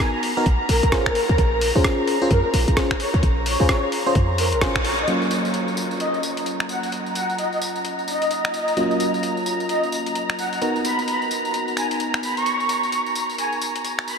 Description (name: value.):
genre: UK garage, two-step garage.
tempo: 130 BPM.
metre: 4/4.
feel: swing 61% on 16ths.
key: Eb minor.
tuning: A4 = 441 Hz.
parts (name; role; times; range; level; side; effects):
breathy flute-like synth lead; melody; 0.0-14.2 s; Bb4 to C#6; -25 LUFS; equal; ensemble chorus, diffuse ambient delay.
muted studio violin section; sustained chords; 0.0-14.2 s; Bb5; -29 LUFS; right 1 dB; sidechain pumping, low-pass filter.
FM electric piano; stabs; 0.0-14.2 s; Gb3 to C5; -25 LUFS; equal; chorus, phaser, low-pass filter, diffuse ambient delay.
boom bap sampler-style drum kit; drums; 0.0-14.2 s; finger snaps, hi-hat, rim click, tambourine; -27 LUFS; left 1 dB; none.
electronic kick drum; drums; 0.0-4.8 s; none; -23 LUFS; equal; none.
short 808-style bass; bass; 0.5-5.1 s; Bb1 to F2; -21 LUFS; equal; none.
room: wet huge ambient reverb, RT60 7.9 s.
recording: dreamy mix soaked in reverb.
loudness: -19 LUFS.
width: side -6 dB against mid.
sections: 0.0-5.1 A section; 5.1-14.2 B section.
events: band accent 4.6; filter sweep on FM electric piano 5.1-14.2; filter sweep on violin section 5.1-14.2.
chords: 0.5 Bbm9; 5.1 Ebm9; 10.6 Bmaj9.